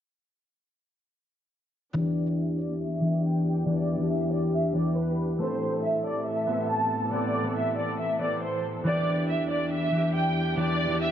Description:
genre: hip hop.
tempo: 139 BPM.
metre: 4/4.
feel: half-time.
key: E minor.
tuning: A4 = 440 Hz.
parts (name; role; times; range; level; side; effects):
concert harp; accompaniment; 1.9-11.1 s; E3 to A4; -27 LUFS; left 1 dB; low-pass filter.
rich studio violin section; melody; 2.0-11.1 s; B4 to A5; -29 LUFS; right 1 dB; low-pass filter, digital delay.
rich symphonic string section; sustained chords; 2.0-11.1 s; E2 to A4; -33 LUFS; left 1 dB; low-pass filter.
room: light reverb, small room ambience.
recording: nothing above 7.5 kHz.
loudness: -24 LUFS.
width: side -10 dB against mid.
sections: 2.0-11.1 A section.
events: filter sweep 2.0-11.1.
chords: 2.0 Em7; 5.4 Amadd9; 8.9 Em7.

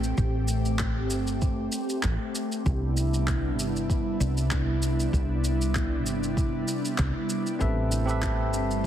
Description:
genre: sunset chillout.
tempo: 97 BPM.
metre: 4/4.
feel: swing 54% on 16ths.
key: unclear.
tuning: A4 = 440 Hz.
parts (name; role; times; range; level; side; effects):
airy breathy pad; sustained chords; 0.0-8.9 s; C3 to G4; -29 LUFS; equal; chorus.
woody fretless electric bass; bass; 0.0-8.9 s; G1 to C2; -27 LUFS; equal; none.
electronic shaker and handclaps; drums; 0.0-8.8 s; none; -35 LUFS; equal; none.
electronic kick drum; drums; 0.2-8.9 s; none; -29 LUFS; equal; none.
bell-like tine electric piano; accompaniment; 7.6-8.9 s; C4 to E5; -29 LUFS; left 1 dB; auto-pan, ping-pong delay.
room: light reverb.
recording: heavily compressed radio sound.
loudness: -24 LUFS.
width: side -10 dB against mid.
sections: 0.0-8.9 A section.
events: none.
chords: 0.0 Am7; 2.7 Cmaj7; 7.6 Am9.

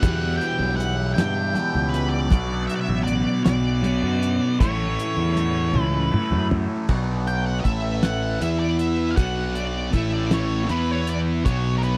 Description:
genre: psychedelic rock.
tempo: 52 BPM (dotted quarters).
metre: 6/8.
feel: straight.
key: B minor.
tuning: A4 = 441 Hz.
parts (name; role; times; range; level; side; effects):
octave-fuzz lead guitar; melody; 0.0-12.0 s; A#4 to G5; -31 LUFS; equal; distortion, slapback echo.
overdriven combo organ; sustained chords; 0.0-12.0 s; E3 to B4; -35 LUFS; equal; none.
thick fuzz guitar; riff; 0.0-12.0 s; E2 to E4; -27 LUFS; equal; distortion, phaser.
fuzz fingered electric bass; bass; 0.0-12.0 s; A1 to G2; -27 LUFS; equal; overdrive.
cloth-damped thuddy drum kit; drums; 0.0-12.0 s; crash cymbal, hi-hat, kick drum, snare drum, toms; -24 LUFS; equal; none.
congas; percussion; 0.0-6.7 s; none; -36 LUFS; equal; none.
room: little or no reverb.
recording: dry, close 1970s-style studio recording.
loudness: -22 LUFS.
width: mono.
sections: 0.0-6.9 A section; 6.9-12.0 B section.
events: drum fill 5.7-6.9; lead electric guitar solo 6.9-12.0.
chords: 0.0 Em; 2.3 Bm; 4.6 A; 6.9 Bm; 7.7 A5; 8.4 E5; 9.2 Bm; 9.9 A5; 10.7 E5; 11.5 Bm.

